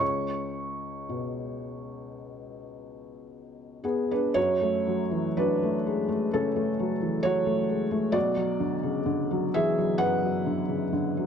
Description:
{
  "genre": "neoclassical minimalist piano",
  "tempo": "53-66 BPM",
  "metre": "4/4",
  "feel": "rubato",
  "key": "F# minor",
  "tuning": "A4 = 439 Hz",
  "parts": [
    { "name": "felt-muted upright piano", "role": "solo", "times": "0.0-11.3 s", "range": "B1 to C#6", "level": "-25 LUFS", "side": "equal", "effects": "none" }
  ],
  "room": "light reverb",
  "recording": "close, detailed microphones",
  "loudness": "-25 LUFS",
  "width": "side -7 dB against mid",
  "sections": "0.0-4.4 A section; 4.4-11.3 B section",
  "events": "none",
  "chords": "0.0 Bsus2/C#; 4.4 F#madd9; 8.2 Bm"
}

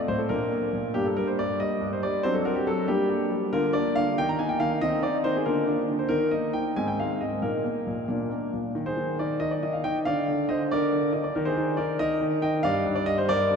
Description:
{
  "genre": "classical-period piano sonatina",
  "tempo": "93 BPM (dotted quarters)",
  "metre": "6/8",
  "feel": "straight",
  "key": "Eb major from 3.5 s",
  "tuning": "A4 = 440 Hz",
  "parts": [
    { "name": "warm grand piano", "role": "solo", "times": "0.0-13.6 s", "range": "G2 to Bb5", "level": "-24 LUFS", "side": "equal", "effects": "none" }
  ],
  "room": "wet cathedral reverb, RT60 5.2 s",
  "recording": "in a vast, echoing space",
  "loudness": "-24 LUFS",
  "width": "side -6 dB against mid",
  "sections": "0.0-8.8 A section; 8.8-13.6 B section",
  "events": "none",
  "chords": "0.3 Bb; 0.9 Gm; 2.2 D7/F#; 2.9 Gm; 3.5 Bb/D; 4.2 Eb5; 4.8 Cmadd9/Eb; 5.5 Bb/D; 6.1 Eb5; 6.8 Ab; 7.4 Eb5/Bb; 8.1 Bb; 8.8 Eb5; 10.1 Bb/D; 11.3 Eb5; 12.6 Gm7"
}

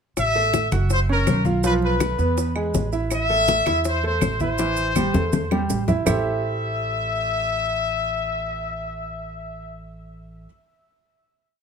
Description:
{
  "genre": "latin, salsa",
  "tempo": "163 BPM",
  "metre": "4/4",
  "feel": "straight",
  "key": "A minor",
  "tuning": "A4 = 439 Hz",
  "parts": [
    { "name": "bright trumpet section", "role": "melody", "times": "0.2-9.8 s", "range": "A#4 to E5", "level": "-24 LUFS", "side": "left 3 dB", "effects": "tape echo" },
    { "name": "upright bass", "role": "bass", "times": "0.2-10.5 s", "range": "F#1 to E2", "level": "-26 LUFS", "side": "right 1 dB", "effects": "none" },
    { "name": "bongos", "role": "percussion", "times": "0.2-6.2 s", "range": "none", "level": "-27 LUFS", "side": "left 6 dB", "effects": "none" },
    { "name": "claves", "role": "percussion", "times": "0.2-6.2 s", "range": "none", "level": "-35 LUFS", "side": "right 7 dB", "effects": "none" },
    { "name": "congas", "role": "percussion", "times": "0.2-6.2 s", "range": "none", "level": "-27 LUFS", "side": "left 3 dB", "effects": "none" },
    { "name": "maracas", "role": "percussion", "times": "0.2-6.2 s", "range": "none", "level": "-33 LUFS", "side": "right 8 dB", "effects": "none" },
    { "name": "clear baby grand piano", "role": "accompaniment", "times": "0.4-10.5 s", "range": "E3 to F#5", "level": "-26 LUFS", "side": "right 4 dB", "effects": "none" }
  ],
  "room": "moderate studio ambience, RT60 0.5 s",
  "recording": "none",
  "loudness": "-19 LUFS",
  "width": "side -6 dB against mid",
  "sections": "0.2-6.1 A section; 6.1-9.0 final chord",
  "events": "drum fill 4.6-6.1",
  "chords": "0.2 A5; 0.9 F#; 1.6 Fmaj7#11/B; 2.4 E; 3.1 Am7"
}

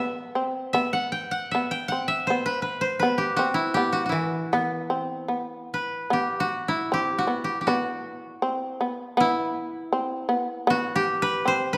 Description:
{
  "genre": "japanese traditional, Japanese chamber music",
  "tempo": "73-82 BPM",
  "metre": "2/4",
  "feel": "rubato",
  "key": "E hirajoshi",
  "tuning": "A4 = 438 Hz",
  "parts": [
    { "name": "koto", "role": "melody", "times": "0.0-11.8 s", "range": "E4 to G5", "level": "-28 LUFS", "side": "equal", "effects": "none" },
    { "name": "shamisen", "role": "second line", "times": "0.0-11.8 s", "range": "B3 to C4", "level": "-29 LUFS", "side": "equal", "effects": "none" },
    { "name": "koto", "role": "accompaniment", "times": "4.1-6.5 s", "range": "E3 to B3", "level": "-33 LUFS", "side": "equal", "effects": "none" }
  ],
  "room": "moderate concert hall reverb, RT60 1.9 s",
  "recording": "none",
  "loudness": "-26 LUFS",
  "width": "mono",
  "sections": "0.0-6.1 A section; 6.1-11.8 B section",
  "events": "none",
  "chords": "none"
}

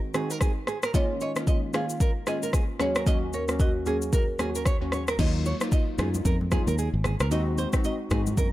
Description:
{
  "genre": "afrobeats",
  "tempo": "113 BPM",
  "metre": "4/4",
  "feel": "swing 58% on 16ths",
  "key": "Eb dorian",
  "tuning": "A4 = 441 Hz",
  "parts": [
    { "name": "glassy wavetable pluck", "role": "accompaniment", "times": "0.1-8.4 s", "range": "Eb2 to Gb4", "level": "-31 LUFS", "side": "left 1 dB", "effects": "chorus" },
    { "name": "afro-pop drum kit", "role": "drums", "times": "0.1-8.5 s", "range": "crash cymbal, kick drum, rim click, shaker", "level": "-26 LUFS", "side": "equal", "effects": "none" },
    { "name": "flamenco guitar", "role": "riff", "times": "0.2-8.5 s", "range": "Ab4 to Eb5", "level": "-33 LUFS", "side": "right 4 dB", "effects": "ping-pong delay" },
    { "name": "marimba with medium mallets", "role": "melody", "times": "1.0-4.9 s", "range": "Gb4 to F5", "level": "-33 LUFS", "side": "equal", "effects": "ping-pong delay" },
    { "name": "fingered electric bass", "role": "bass", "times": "5.2-8.5 s", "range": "Ab1 to Ab2", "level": "-26 LUFS", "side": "equal", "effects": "none" },
    { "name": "congas", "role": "percussion", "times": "5.5-8.5 s", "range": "none", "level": "-36 LUFS", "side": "left 2 dB", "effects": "none" }
  ],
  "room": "small room ambience",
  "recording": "dark, warm production",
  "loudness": "-23 LUFS",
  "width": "side -15 dB against mid",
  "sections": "0.0-5.2 A section; 5.2-8.5 B section",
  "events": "none",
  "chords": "0.0 Ab7/Eb; 0.9 Db6/Eb; 2.8 Gb/Eb; 5.2 Ebmadd9; 7.3 Ab7/Eb"
}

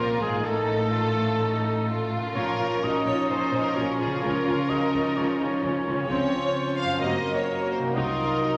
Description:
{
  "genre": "classical",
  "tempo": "128 BPM",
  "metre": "4/4",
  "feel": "rubato",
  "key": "Bb minor",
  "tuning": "A4 = 443 Hz",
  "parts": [
    { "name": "warm symphonic violin section", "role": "melody", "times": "0.0-8.6 s", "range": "Ab4 to F5", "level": "-33 LUFS", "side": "equal", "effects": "none" },
    { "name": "clear cor anglais", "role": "second line", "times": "0.0-8.6 s", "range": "Ab4 to Eb5", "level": "-33 LUFS", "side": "equal", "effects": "none" },
    { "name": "mellow clarinet", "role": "second line", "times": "0.0-8.6 s", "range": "Eb4 to Bb4", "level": "-35 LUFS", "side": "equal", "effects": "none" },
    { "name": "warm symphonic violin section", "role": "second line", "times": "0.0-8.6 s", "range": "Bb3 to F4", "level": "-35 LUFS", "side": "equal", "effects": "none" },
    { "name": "warm symphonic viola section", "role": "accompaniment", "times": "0.0-8.2 s", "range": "F3 to Eb4", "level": "-36 LUFS", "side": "equal", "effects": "none" },
    { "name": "warm French horn section", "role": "sustained chords", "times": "0.0-8.6 s", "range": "F3 to Eb4", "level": "-34 LUFS", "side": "equal", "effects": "none" },
    { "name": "concert harp", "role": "arpeggios", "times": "0.0-8.6 s", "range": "Gb2 to C5", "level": "-34 LUFS", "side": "equal", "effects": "none" },
    { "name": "rich studio cello section", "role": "bass", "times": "0.0-8.3 s", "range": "Gb2 to Db3", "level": "-38 LUFS", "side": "equal", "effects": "none" },
    { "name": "rich symphonic double bass section", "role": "bass", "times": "0.0-8.3 s", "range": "Gb1 to Db2", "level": "-36 LUFS", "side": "equal", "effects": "none" }
  ],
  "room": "wet scoring stage reverb, RT60 1.9 s",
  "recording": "none",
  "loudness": "-25 LUFS",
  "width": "mono",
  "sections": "0.0-8.6 A section",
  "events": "none",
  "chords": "0.5 F7/A; 2.4 Bbm; 4.2 Bbm/Db; 6.1 Dbmaj7; 7.0 Gb; 8.0 Cm7b5"
}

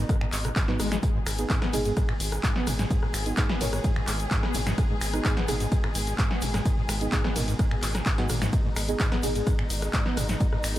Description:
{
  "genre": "acid house",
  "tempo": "128 BPM",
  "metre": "4/4",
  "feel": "straight",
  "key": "G# minor",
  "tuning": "A4 = 440 Hz",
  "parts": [
    { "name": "dark chamber string section", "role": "sustained chords", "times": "0.0-10.8 s", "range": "B2 to G#4", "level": "-35 LUFS", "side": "left 2 dB", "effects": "vintage 12-bit sampler grit, sidechain pumping" },
    { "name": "overdriven acid bass", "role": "riff", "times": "0.0-10.6 s", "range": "G#1 to B3", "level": "-32 LUFS", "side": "equal", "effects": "distortion, ensemble chorus, sidechain pumping, digital delay" },
    { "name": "deep mellow chord stab", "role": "stabs", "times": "0.0-10.8 s", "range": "B3 to A#4", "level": "-34 LUFS", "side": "right 3 dB", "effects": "chorus, digital delay" },
    { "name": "round analog bass", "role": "bass", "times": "0.0-10.8 s", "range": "G#1", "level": "-30 LUFS", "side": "equal", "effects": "sidechain pumping" },
    { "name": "dusty soul sampler-style drum kit", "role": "drums", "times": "0.1-10.8 s", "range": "hi-hat, snare drum, tambourine", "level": "-43 LUFS", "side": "equal", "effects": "none" },
    { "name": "electronic kick drum", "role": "drums", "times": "0.1-10.5 s", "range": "none", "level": "-26 LUFS", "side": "equal", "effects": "none" },
    { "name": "punchy analog drum machine", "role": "drums", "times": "0.1-10.8 s", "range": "finger snaps, handclaps, hi-hat, ride cymbal, rim click, snare drum", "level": "-31 LUFS", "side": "left 1 dB", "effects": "none" },
    { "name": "tube shaker", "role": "percussion", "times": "0.1-10.8 s", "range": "none", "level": "-40 LUFS", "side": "right 2 dB", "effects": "none" },
    { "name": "breathy flute-like synth lead", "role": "melody", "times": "1.7-3.8, 9.2-9.4 s", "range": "G#4 to C#5", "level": "-36 LUFS", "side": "left 1 dB", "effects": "wide subtle chorus, tape echo" }
  ],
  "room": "little or no reverb",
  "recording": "none",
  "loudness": "-23 LUFS",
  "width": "side -14 dB against mid",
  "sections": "0.0-10.8 A section",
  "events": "none",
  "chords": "0.0 G#m"
}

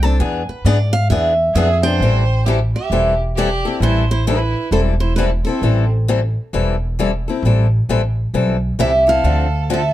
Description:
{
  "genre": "acoustic string swing (jazz manouche)",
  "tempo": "133 BPM",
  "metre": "4/4",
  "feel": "swing 63% on 8ths",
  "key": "A minor",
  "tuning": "A4 = 440 Hz",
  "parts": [
    { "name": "picked steel-string acoustic guitar", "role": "melody", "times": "0.0-5.9, 8.8-9.9 s", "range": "A4 to A5", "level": "-20 LUFS", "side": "right 2 dB", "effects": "none" },
    { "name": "picked steel-string acoustic guitar", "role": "accompaniment", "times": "0.0-9.8 s", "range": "D3 to A4", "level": "-20 LUFS", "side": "left 6 dB", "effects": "none" },
    { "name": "upright bass", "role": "bass", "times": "0.0-9.9 s", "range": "E1 to G#2", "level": "-17 LUFS", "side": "equal", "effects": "none" },
    { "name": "clear violin", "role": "second line", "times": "1.5-5.9, 8.8-9.9 s", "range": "C4 to C5", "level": "-24 LUFS", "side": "right 4 dB", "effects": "none" }
  ],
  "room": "light reverb",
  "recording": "dark, warm production",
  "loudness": "-14 LUFS",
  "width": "side -14 dB against mid",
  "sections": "0.0-2.0 A section; 2.0-9.9 B section",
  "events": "steel-string acoustic guitar solo 0.0-2.0",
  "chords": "0.2 E7; 2.0 Am7; 9.2 Dm7"
}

